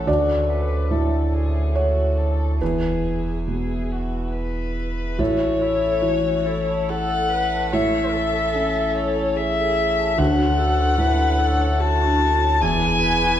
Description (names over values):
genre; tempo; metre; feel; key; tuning
neoclassical piano and strings; 72 BPM; 3/4; rubato; A major; A4 = 440 Hz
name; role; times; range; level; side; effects
dark violin; melody; 0.0-13.4 s; F#4 to A5; -23 LUFS; left 4 dB; none
felt-muted upright piano; accompaniment; 0.0-13.4 s; D2 to F#5; -24 LUFS; right 1 dB; none
pedal harmonium; sustained chords; 0.0-13.4 s; C#3 to B4; -33 LUFS; right 1 dB; none
punchy sub bass; bass; 0.0-13.4 s; E1 to D2; -24 LUFS; equal; none
dark viola; accompaniment; 5.2-13.4 s; E4 to C#5; -29 LUFS; right 3 dB; none
vibraphone with medium hard mallets; arpeggios; 5.2-13.3 s; D4 to A5; -29 LUFS; left 1 dB; none
room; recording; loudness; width
wet recital hall reverb, RT60 1.4 s; recorded in a church or concert hall; -18 LUFS; side -10 dB against mid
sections
0.0-5.2 A section; 5.2-13.4 A section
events
none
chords
0.1 Dmaj7; 2.6 E; 5.2 A; 10.2 Dmaj7; 12.6 E